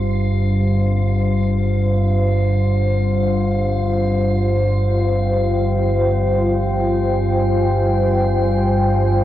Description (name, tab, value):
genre	dark ambient drone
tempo	free time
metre	none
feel	none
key	unclear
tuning	A4 = 436 Hz
part	dark analog pad	sustained chords	0.0-9.2 s	G3 to Ab5	-20 LUFS	left 1 dB	chorus
part	deep rumbling drone	drone	0.0-9.2 s	G1 to G2	-18 LUFS	equal	built-in reverb, wide subtle chorus
part	metallic inharmonic drone	texture	0.0-9.2 s	F4	-25 LUFS	left 2 dB	chorus, built-in reverb
room	wet cathedral reverb, RT60 6.1 s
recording	worn, warbling old tape, cassette tape, warbly pitch drift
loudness	-15 LUFS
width	side -13 dB against mid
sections	0.0-9.2 A section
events	none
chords	0.0 G7(no3); 2.7 Fm/G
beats	free time